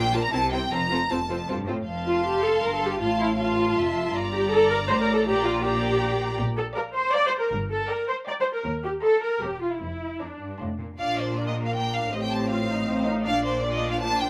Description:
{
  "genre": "quick classical-period movement for string orchestra",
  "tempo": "159 BPM",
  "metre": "3/4",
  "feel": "straight",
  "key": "F major, Bb major from 6.4 s",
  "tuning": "A4 = 439 Hz",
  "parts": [
    { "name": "clear studio violin section", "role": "melody", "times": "0.0-14.3 s", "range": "C5 to C6", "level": "-32 LUFS", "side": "equal", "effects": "none" },
    { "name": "rich chamber violin section", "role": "second line", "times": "0.0-14.3 s", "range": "A4 to Bb5", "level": "-34 LUFS", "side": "equal", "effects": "none" },
    { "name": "clear symphonic cello section", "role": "bass", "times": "0.0-14.3 s", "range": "Eb2 to C3", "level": "-33 LUFS", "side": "equal", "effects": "none" },
    { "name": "warm studio double bass section", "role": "bass", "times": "0.0-14.3 s", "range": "E1 to Eb2", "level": "-35 LUFS", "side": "equal", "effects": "none" },
    { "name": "rich symphonic viola section", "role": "accompaniment", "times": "0.1-14.3 s", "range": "F3 to D5", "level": "-28 LUFS", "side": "equal", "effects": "none" }
  ],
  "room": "light reverb",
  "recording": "none",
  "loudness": "-25 LUFS",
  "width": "mono",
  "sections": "0.0-1.9 A section; 1.9-11.0 A section; 11.0-14.3 B section",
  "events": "none",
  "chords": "0.3 C; 0.7 F; 3.0 F/A; 4.1 Gm; 5.3 Gm/Bb; 6.4 Bb; 7.5 Gm; 8.7 Cm7/Eb; 9.4 Edim7; 9.8 Bb/F; 10.6 F; 11.0 Bb; 12.1 F7/A; 13.3 Bb",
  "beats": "0.33 | 0.72 1.11 1.49 | 1.88 2.26 2.64 | 3.02 3.39 3.77 | 4.15 4.53 4.90 | 5.27 5.65 6.02 | 6.39 6.76 7.14 | 7.51 7.89 8.27 | 8.65 9.03 9.41 | 9.81 10.21 10.60 | 10.99 11.37 11.75 | 12.13 12.50 12.88 | 13.26 13.63 14.00"
}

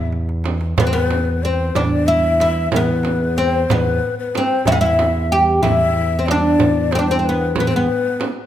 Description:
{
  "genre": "Arabic maqam ensemble",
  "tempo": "62 BPM (dotted quarters)",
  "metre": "6/8",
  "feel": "straight",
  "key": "E maqam saba",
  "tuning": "A4 = 440 Hz",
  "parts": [
    { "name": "oud", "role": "melody", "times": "0.0-8.3 s", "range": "B3 to G4", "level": "-18 LUFS", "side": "equal", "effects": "none" },
    { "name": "breathy ney", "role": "second line", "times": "0.0-8.2 s", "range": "B4 to F#5", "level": "-22 LUFS", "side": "left 6 dB", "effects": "none" },
    { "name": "smooth synth bass", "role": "bass", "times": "0.0-7.9 s", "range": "E2", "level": "-20 LUFS", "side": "equal", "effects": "none" },
    { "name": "darbuka", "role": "percussion", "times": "0.1-8.4 s", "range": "none", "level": "-26 LUFS", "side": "right 2 dB", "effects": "none" },
    { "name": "frame drum", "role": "percussion", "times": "0.5-8.4 s", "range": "none", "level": "-24 LUFS", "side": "right 5 dB", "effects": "none" }
  ],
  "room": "moderate recital hall reverb, RT60 1.4 s",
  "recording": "none",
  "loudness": "-15 LUFS",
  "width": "side -11 dB against mid",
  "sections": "0.8-8.5 A section",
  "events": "drum fill 0.1-0.8",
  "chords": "none",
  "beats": "| 0.78 1.75 | 2.72 3.69 | 4.67 5.63 | 6.60 7.57"
}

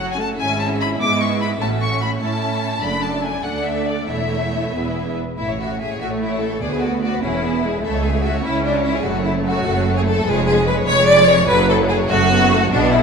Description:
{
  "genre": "quick classical-period movement for string orchestra",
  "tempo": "98 BPM (dotted quarters)",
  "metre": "6/8",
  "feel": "rubato",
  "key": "A major",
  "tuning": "A4 = 440 Hz",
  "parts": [
    { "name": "rich chamber violin section", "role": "melody", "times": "0.0-13.0 s", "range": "G#4 to D6", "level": "-25 LUFS", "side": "left 4 dB", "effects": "none" },
    { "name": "clear symphonic violin section", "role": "second line", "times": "0.0-13.0 s", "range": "D4 to F#5", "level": "-20 LUFS", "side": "left 2 dB", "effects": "none" },
    { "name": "rich symphonic viola section", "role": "accompaniment", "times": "0.0-13.0 s", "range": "F#3 to F#4", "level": "-24 LUFS", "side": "right 1 dB", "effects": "none" },
    { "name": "clear symphonic double bass section", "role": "bass", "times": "0.0-13.0 s", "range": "E1 to A2", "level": "-24 LUFS", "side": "right 4 dB", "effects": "none" },
    { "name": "rich symphonic cello section", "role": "bass", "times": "0.0-13.0 s", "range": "C#2 to A3", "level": "-24 LUFS", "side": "right 3 dB", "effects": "none" }
  ],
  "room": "moderate concert hall reverb, RT60 2.0 s",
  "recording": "minimal, uncompressed stereo recording",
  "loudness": "-16 LUFS",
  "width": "side -5 dB against mid",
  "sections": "0.0-5.4 A section; 5.4-13.0 A section",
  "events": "none",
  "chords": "0.4 E/G#; 1.6 A; 2.8 D/F#; 4.1 A/E; 4.7 E; 5.4 A; 6.6 Bm/D; 7.2 E; 7.8 A/C#; 9.1 F#m; 10.3 C#7/E#; 11.5 F#m",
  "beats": "| 0.39 1.00 | 1.61 2.22 | 2.83 3.45 | 4.09 4.74 | 5.38 6.01 | 6.62 7.23 | 7.84 8.44 | 9.05 9.66 | 10.26 10.87 | 11.48 12.10 | 12.71"
}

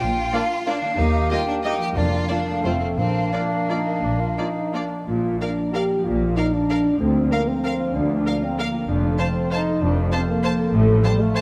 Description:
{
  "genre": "classical, orchestral ballroom waltz",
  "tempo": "162-211 BPM",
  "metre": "3/4",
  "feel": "rubato",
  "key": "Bb major",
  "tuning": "A4 = 438 Hz",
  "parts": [
    { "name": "clear chamber violin section", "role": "second line", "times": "0.0-11.4 s", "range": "Bb3 to F5", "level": "-34 LUFS", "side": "equal", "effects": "none" },
    { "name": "silver concert flute", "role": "second line", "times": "0.0-4.9 s", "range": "D5 to G5", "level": "-29 LUFS", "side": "equal", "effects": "none" },
    { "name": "concert harp", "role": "arpeggios", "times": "0.0-11.4 s", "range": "A2 to C6", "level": "-30 LUFS", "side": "equal", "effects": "none" },
    { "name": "clear studio cello section", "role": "bass", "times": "0.0-11.0 s", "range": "D2 to Bb2", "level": "-30 LUFS", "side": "equal", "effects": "none" },
    { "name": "rich symphonic double bass section", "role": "bass", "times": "0.0-11.0 s", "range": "F1 to Eb2", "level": "-28 LUFS", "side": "equal", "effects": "none" },
    { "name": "rich chamber violin section", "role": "melody", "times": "0.3-11.4 s", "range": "C5 to A5", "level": "-35 LUFS", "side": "equal", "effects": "none" },
    { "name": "warm clarinet", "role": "second line", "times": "0.3-4.9 s", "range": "C4 to G4", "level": "-33 LUFS", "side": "equal", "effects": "none" },
    { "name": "clear studio viola section", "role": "accompaniment", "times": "0.3-11.4 s", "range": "A3 to C5", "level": "-35 LUFS", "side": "equal", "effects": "none" },
    { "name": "mellow bassoon", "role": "accompaniment", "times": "0.3-5.1 s", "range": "A3 to F4", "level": "-32 LUFS", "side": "equal", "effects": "none" },
    { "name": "mellow French horn section", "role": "sustained chords", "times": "0.3-11.4 s", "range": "G3 to G4", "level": "-26 LUFS", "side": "equal", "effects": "none" },
    { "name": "timpani", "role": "percussion", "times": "2.0-3.5 s", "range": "F2 to Bb2", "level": "-32 LUFS", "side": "equal", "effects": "none" }
  ],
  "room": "moderate concert hall reverb, RT60 2.1 s",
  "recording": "none",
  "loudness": "-22 LUFS",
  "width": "mono",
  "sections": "0.0-5.1 A section; 5.1-11.4 B section",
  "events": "none",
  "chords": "0.0 Bb; 1.0 Eb; 2.0 Bb/F; 3.0 Bb; 7.0 Bb/D; 8.9 F; 10.7 F/A",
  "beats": "| 0.02 0.34 0.68 | 0.99 1.31 1.65 | 1.97 2.29 2.64 | 2.98 3.32 3.69 | 4.03 4.37 4.73 | 5.07 5.40 5.73 | 6.04 6.36 6.69 | 7.00 7.31 7.64 | 7.95 8.26 8.58 | 8.88 9.19 9.52 | 9.82 10.12 10.44 | 10.73 11.04 11.35"
}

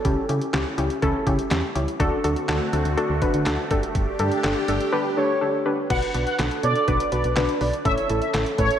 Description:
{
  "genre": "synth-pop",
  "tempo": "123 BPM",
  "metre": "4/4",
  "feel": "straight",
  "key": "B minor",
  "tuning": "A4 = 440 Hz",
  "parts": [
    { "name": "warm velvety synth lead", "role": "melody", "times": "0.0-0.7, 5.2-8.8 s", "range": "A4 to D5", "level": "-28 LUFS", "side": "right 2 dB", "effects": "chorus, tape echo" },
    { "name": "warbly dusty pluck", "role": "accompaniment", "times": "0.0-8.7 s", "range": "C#4 to C#5", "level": "-24 LUFS", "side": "left 1 dB", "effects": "chorus" },
    { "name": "solid FM bass", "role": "bass", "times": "0.0-8.7 s", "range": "G1 to D3", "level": "-26 LUFS", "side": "equal", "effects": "none" },
    { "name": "detuned 8-bit digital drum machine", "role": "drums", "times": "0.0-8.8 s", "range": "crash cymbal, handclaps, hi-hat, kick drum, snare drum", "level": "-28 LUFS", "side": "equal", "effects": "none" },
    { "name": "phased analog pad", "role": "sustained chords", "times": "2.0-5.9 s", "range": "D3 to G4", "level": "-29 LUFS", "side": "right 1 dB", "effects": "phaser, chorus" },
    { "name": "mellow synth brass", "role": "second line", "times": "5.9-8.8 s", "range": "C#5 to F#5", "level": "-25 LUFS", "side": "equal", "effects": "chorus, phaser, tape echo" }
  ],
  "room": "wet lush hall reverb, RT60 2.2 s",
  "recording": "dreamy mix soaked in reverb",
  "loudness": "-20 LUFS",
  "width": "side -9 dB against mid",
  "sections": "0.0-5.9 A section; 5.9-8.8 B section",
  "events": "none",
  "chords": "0.0 C#dim; 2.0 D7; 3.7 Gsus2; 5.9 Bmadd9; 7.9 A",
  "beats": "| 0.05 0.54 1.02 1.51 | 2.00 2.49 2.98 3.46 | 3.95 4.44 4.93 5.42 | 5.90 6.39 6.88 7.37 | 7.85 8.34"
}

